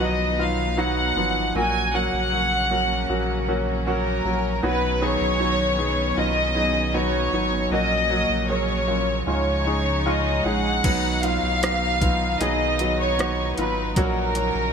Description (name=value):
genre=pop ballad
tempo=77 BPM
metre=4/4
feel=straight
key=unclear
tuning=A4 = 440 Hz
part: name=warm studio violin section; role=melody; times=0.0-14.7 s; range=A#4 to G#5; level=-23 LUFS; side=equal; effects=digital delay
part: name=clear baby grand piano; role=accompaniment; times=0.0-14.7 s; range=G#2 to G#4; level=-25 LUFS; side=right 1 dB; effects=wide subtle chorus
part: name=clear studio string section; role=sustained chords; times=0.0-14.7 s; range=C#3 to D#4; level=-32 LUFS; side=equal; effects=none
part: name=warm sub bass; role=bass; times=0.0-14.7 s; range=G#1 to C#2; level=-28 LUFS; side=equal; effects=none
part: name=smooth R&B drum kit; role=drums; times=10.8-14.5 s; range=crash cymbal, hi-hat, kick drum, rim click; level=-26 LUFS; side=equal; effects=gated reverb
room=light reverb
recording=bright 1980s-style digital production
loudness=-20 LUFS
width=side -6 dB against mid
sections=0.0-10.8 A section; 10.8-14.7 B section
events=none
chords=0.0 B; 1.6 F#/A#; 4.6 B; 7.7 F#/A#; 9.3 C#add9; 10.8 B; 14.0 F#/A#